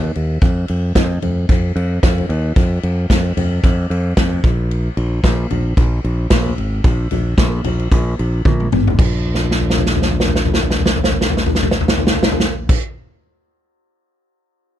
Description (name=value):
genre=piano-driven pop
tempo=112 BPM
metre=4/4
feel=swing 56% on 16ths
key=unclear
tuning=A4 = 445 Hz
part: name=fingered electric bass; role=bass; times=0.0-12.8 s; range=Ab1 to F2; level=-18 LUFS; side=equal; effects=none
part: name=unplugged drum kit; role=drums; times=0.0-12.8 s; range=crash cymbal, kick drum, ride cymbal, snare drum, toms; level=-16 LUFS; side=equal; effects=none
room=little or no reverb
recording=none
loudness=-14 LUFS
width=side -11 dB against mid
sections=0.0-9.0 A section; 9.0-13.3 B section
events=drum fill 8.4-9.0, 9.3-12.7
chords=none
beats=| 0.43 0.96 1.50 2.03 | 2.57 3.10 3.64 4.17 | 4.71 5.24 5.78 6.31 | 6.84 7.38 7.92 8.45 | 8.98 9.52 10.05 10.59 | 11.12 11.66 12.19 12.73